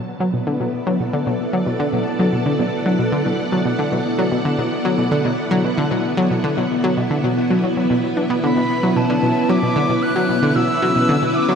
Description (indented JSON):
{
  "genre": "ambient, sequencer-driven space music",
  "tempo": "113 BPM",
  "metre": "4/4",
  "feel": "straight",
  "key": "B minor",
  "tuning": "A4 = 440 Hz",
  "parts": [
    { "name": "string machine, full ensemble", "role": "sustained chords", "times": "0.0-11.6 s", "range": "B3 to F#5", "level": "-20 LUFS", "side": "equal", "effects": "ensemble chorus" },
    { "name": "analog pluck", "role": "riff", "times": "0.2-11.6 s", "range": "B2 to D4", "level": "-20 LUFS", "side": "left 1 dB", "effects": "chorus, ping-pong delay" },
    { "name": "silver concert flute", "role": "melody", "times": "8.4-11.6 s", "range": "A5 to F#6", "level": "-21 LUFS", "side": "equal", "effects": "ping-pong delay" }
  ],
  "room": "wet huge ambient reverb, RT60 7.6 s",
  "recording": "dreamy mix soaked in reverb",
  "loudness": "-16 LUFS",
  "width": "side -6 dB against mid",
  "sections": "0.0-11.6 A section",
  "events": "none",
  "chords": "0.0 Bmadd9"
}